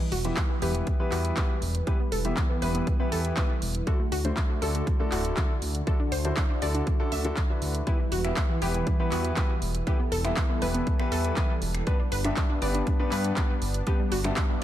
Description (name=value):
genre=progressive house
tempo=120 BPM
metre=4/4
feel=straight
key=E minor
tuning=A4 = 440 Hz
part: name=warm analog pad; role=sustained chords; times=0.0-14.6 s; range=D3 to B4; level=-36 LUFS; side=right 1 dB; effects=chorus, tremolo, sidechain pumping
part: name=wide unison pluck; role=arpeggios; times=0.0-14.6 s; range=E3 to E5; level=-33 LUFS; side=equal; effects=sidechain pumping, digital delay
part: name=fat analog bass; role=bass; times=0.1-14.3 s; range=D1 to G2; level=-29 LUFS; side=equal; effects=sidechain pumping
part: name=house drum kit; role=drums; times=0.1-14.5 s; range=finger snaps, handclaps, hi-hat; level=-34 LUFS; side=right 1 dB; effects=overdrive
part: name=warm grand piano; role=stabs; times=0.2-14.6 s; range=G2 to E5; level=-32 LUFS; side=left 2 dB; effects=sidechain pumping, digital delay
part: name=electronic kick drum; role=drums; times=0.4-14.5 s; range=none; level=-26 LUFS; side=equal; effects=overdrive
room=digital ambience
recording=none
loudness=-24 LUFS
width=side -12 dB against mid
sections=0.0-14.6 A section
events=filter sweep on analog synth pad 0.0-14.6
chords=0.0 Em; 3.9 Dadd9; 7.9 Em; 11.9 G